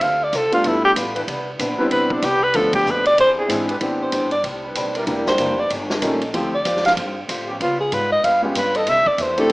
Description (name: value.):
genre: jazz, big band swing.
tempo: 190 BPM.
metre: 4/4.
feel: swing 61% on 8ths.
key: C major, A minor from 3.8 s.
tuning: A4 = 440 Hz.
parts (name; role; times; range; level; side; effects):
breathy alto saxophone; melody; 0.0-9.5 s; D4 to F5; -17 LUFS; equal; none.
fingerpicked swing-style acoustic guitar; accompaniment; 0.0-9.5 s; A2 to A4; -28 LUFS; equal; none.
upright bass; bass; 0.0-9.5 s; E1 to A2; -32 LUFS; equal; none.
swinging big-band drum kit; drums; 0.0-9.5 s; hi-hat, kick drum, ride cymbal, snare drum; -28 LUFS; right 1 dB; none.
warm concert grand piano; accompaniment; 0.5-9.5 s; E3 to G4; -22 LUFS; equal; none.
clear trombone section; sustained chords; 0.6-8.8 s; A2 to B4; -27 LUFS; equal; none.
room: moderate large studio reverb, RT60 0.9 s.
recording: small speaker sound.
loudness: -17 LUFS.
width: side -21 dB against mid.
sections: 0.0-3.8 A section; 3.8-9.5 A section.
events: alto saxophone solo 0.0-9.5.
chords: 0.0 Dm7; 0.6 G9; 1.3 Cmaj9; 2.5 Bm7b5; 3.2 E7alt; 3.8 Am11; 5.1 Em7b5; 5.7 D#7#11; 6.3 Dm11; 7.6 C#7#11; 8.9 C69.